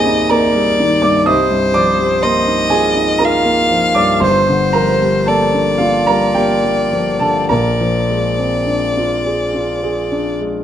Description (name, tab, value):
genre	classical, impressionist duo for violin and grand piano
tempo	51-62 BPM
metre	3/4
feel	rubato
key	unclear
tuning	A4 = 440 Hz
part	warm violin	melody	0.0-10.4 s	C5 to F5	-17 LUFS	left 2 dB	none
part	warm concert grand piano	accompaniment	0.0-10.6 s	G1 to Eb6	-14 LUFS	right 1 dB	none
room	moderate recital hall reverb, RT60 1.6 s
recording	none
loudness	-12 LUFS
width	side -10 dB against mid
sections	0.0-10.6 A section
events	none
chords	0.0 Cm7; 1.3 Eb69/C; 4.2 Gm11; 7.5 Bb9